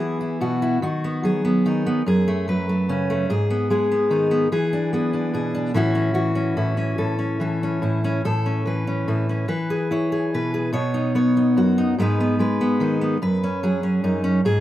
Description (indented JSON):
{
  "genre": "folk, solo fingerstyle acoustic guitar",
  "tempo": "48 BPM (dotted quarters)",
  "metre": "6/8",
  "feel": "straight",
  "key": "B mixolydian",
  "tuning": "A4 = 440 Hz",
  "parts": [
    { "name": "fingerpicked steel-string acoustic guitar", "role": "solo", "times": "0.0-14.6 s", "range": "F#2 to C#5", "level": "-19 LUFS", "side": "equal", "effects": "slapback echo" }
  ],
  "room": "light reverb",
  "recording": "recorded outdoors, with no room sound",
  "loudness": "-19 LUFS",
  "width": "side -13 dB against mid",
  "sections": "0.0-14.6 A section",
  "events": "none",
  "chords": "0.0 Eadd9; 0.8 B/D#; 2.1 F#madd9; 3.3 G#m; 4.5 E7; 5.8 A6; 8.3 A; 9.5 E; 10.8 Badd9; 12.0 G#m; 13.2 Badd9/F#",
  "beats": "| 0.82 2.06 | 3.29 4.52 | 5.76 7.01 | 8.26 9.51 | 10.75 11.99 | 13.21 14.44"
}